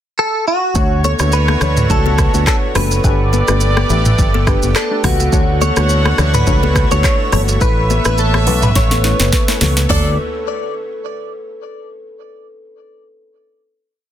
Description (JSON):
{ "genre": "afrobeats", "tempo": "105 BPM", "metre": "4/4", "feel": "swing 55% on 16ths", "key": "D major", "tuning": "A4 = 439 Hz", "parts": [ { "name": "direct-recorded clean electric guitar", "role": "melody", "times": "0.2-10.2 s", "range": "F#4 to D5", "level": "-20 LUFS", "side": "equal", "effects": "analog chorus, ping-pong delay, plate reverb" }, { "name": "clear horn section", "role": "second line", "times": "0.8-10.1 s", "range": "F#3 to F#5", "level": "-24 LUFS", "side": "right 2 dB", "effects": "plate reverb" }, { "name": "soft round pluck", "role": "accompaniment", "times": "0.8-10.1 s", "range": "A3 to C#5", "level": "-24 LUFS", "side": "left 3 dB", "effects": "chorus, plate reverb" }, { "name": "lush unison pad", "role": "sustained chords", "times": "0.8-10.2 s", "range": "D3 to C#5", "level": "-26 LUFS", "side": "right 1 dB", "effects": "chorus, plate reverb" }, { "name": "fingered electric bass with an envelope filter", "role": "bass", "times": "0.8-10.2 s", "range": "F#1 to D2", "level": "-16 LUFS", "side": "equal", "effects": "none" }, { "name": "afro-pop drum kit", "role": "drums", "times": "0.8-10.0 s", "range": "handclaps, hi-hat, kick drum, rim click, shaker, snare drum, toms", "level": "-16 LUFS", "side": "equal", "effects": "soft clipping on snare" }, { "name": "kalimba", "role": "riff", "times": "1.0-10.2 s", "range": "A4 to E5", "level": "-26 LUFS", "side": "equal", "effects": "ping-pong delay" }, { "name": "congas", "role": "percussion", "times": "1.0-10.2 s", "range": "none", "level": "-25 LUFS", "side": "left 9 dB", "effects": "none" } ], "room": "light reverb", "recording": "dense, heavily limited modern master", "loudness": "-12 LUFS", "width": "side -11 dB against mid", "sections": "0.0-0.8 pickup bar; 0.8-9.9 chorus; 9.9-12.2 final chord", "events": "drum fill 8.8-9.9", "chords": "0.0 N.C.; 0.8 Dmaj7; 3.0 Gadd9; 5.3 Dmaj7; 7.6 Aadd9; 9.9 Dmaj7", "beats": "0.18 | 0.76 1.33 1.90 2.47 | 3.04 3.61 4.18 4.75 | 5.33 5.90 6.47 7.04 | 7.61 8.18 8.76 9.33 | 9.90" }